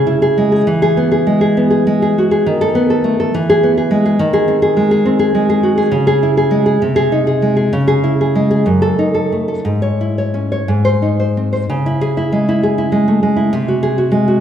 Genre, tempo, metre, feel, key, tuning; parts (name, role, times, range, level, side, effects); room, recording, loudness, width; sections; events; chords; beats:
romantic piece for solo classical guitar; 58-70 BPM (dotted quarters); 6/8; rubato; C# minor; A4 = 440 Hz
nylon-string guitar; solo; 0.0-14.4 s; F#2 to C#5; -12 LUFS; equal
wet concert hall reverb, RT60 2.1 s; recorded in a church or concert hall; -12 LUFS; side -9 dB against mid
0.0-11.7 A section; 11.7-14.4 B section
0.0 C#m; 0.7 E; 2.5 B7/D#; 3.3 E; 4.2 G#7/D#; 5.9 C#m; 6.8 G#/B#; 7.7 C#m; 8.7 D#dim/F#; 9.7 C#m/G#; 10.7 G#; 11.7 C#m; 13.5 G#7/B#
| 0.68 1.57 | 2.46 3.33 | 4.19 5.05 | 5.93 6.82 | 7.73 8.67 | 9.66 10.69 | 11.70 12.62 | 13.53